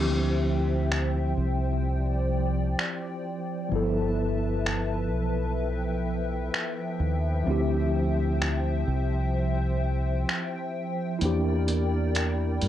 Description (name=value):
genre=contemporary R&B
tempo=64 BPM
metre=4/4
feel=straight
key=D minor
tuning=A4 = 439 Hz
part: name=mellow tine electric piano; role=accompaniment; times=0.0-12.7 s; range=F3 to A4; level=-30 LUFS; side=equal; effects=medium stereo tremolo, cassette tape
part: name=hollow soft pad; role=sustained chords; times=0.0-12.7 s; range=F3 to A5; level=-32 LUFS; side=left 1 dB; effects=ensemble chorus, cassette tape
part: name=deep dub fingered electric bass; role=bass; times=0.0-12.7 s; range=G1 to G2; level=-26 LUFS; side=equal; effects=none
part: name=dusty soul sampler-style drum kit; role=drums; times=0.9-12.7 s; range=finger snaps, hi-hat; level=-31 LUFS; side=equal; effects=cassette tape
room=light reverb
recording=home recording on cassette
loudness=-25 LUFS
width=side -12 dB against mid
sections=0.0-12.7 A section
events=break 0.0-12.7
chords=0.0 Dm11; 3.7 G13; 7.5 Dm11; 11.2 Em7b5